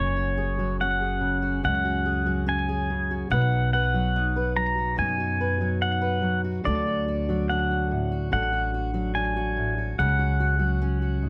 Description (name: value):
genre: acoustic folk duo or small band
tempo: 72 BPM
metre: 4/4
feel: straight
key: unclear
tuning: A4 = 440 Hz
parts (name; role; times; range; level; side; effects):
- pedal steel guitar; melody; 0.0-11.3 s; C#5 to A#5; -29 LUFS; equal; slapback echo
- fingerpicked steel-string acoustic guitar; accompaniment; 0.0-11.3 s; F#2 to B4; -31 LUFS; equal; none
- upright bass; bass; 0.0-11.3 s; F#1 to F#2; -29 LUFS; equal; none
room: light reverb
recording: none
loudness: -25 LUFS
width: mono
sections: 0.0-11.3 A section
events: none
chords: 0.0 F#sus2; 3.3 B; 6.7 D; 10.0 C#sus4